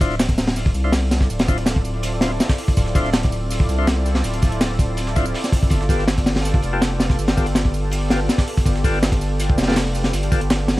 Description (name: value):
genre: drum and bass, jungle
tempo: 163 BPM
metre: 4/4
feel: straight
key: D dorian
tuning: A4 = 440 Hz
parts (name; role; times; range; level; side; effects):
- tonewheel organ; stabs; 0.0-10.4 s; B3 to C5; -29 LUFS; left 2 dB; slow rotary speaker, dub echo
- saturated sub bass; bass; 0.0-10.8 s; D1 to C2; -22 LUFS; equal; none
- breakbeat sampler-style drum kit; drums; 0.0-10.8 s; hi-hat, snare drum, tambourine; -32 LUFS; right 2 dB; overdrive, high-pass filter on perc, high-pass filter on snare, high-pass filter on hats, high-pass filter on room
- crunchy breakbeat drum kit; drums; 0.0-10.8 s; hi-hat, kick drum, snare drum; -19 LUFS; equal; none
room: studio reverb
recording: vinyl crackle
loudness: -17 LUFS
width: side -18 dB against mid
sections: 0.0-10.8 A section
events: none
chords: 0.0 Dm9; 5.7 G9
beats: 0.19 0.56 0.93 | 1.30 1.67 2.03 2.40 | 2.77 3.14 3.51 3.87 | 4.24 4.61 4.98 5.35 | 5.71 6.08 6.45 6.82 | 7.19 7.55 7.92 8.29 | 8.66 9.03 9.40 9.76 | 10.13 10.50